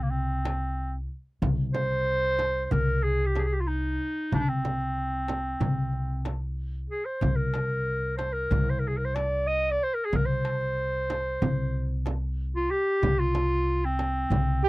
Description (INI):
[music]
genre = Turkish makam ensemble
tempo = 186 BPM (eighths)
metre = 9/8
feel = straight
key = C makam ussak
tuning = A4 = 440 Hz
[part]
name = clear clarinet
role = melody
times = 0.0-14.7 s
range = Bb3 to Eb5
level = -28 LUFS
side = equal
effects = none
[part]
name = upright bass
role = bass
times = 0.0-14.7 s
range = C2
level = -28 LUFS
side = equal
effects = none
[part]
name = darbuka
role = percussion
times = 0.1-14.7 s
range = none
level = -33 LUFS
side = left 3 dB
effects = none
[part]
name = frame drum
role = percussion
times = 0.5-14.5 s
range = none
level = -32 LUFS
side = right 3 dB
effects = none
[part]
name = dark cor anglais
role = second line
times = 14.6-14.7 s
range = G4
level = -22 LUFS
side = right 7 dB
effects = none
[sound]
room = little or no reverb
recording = dry, close 1970s-style studio recording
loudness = -25 LUFS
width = side -20 dB against mid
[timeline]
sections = 0.0-14.7 A section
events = none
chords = none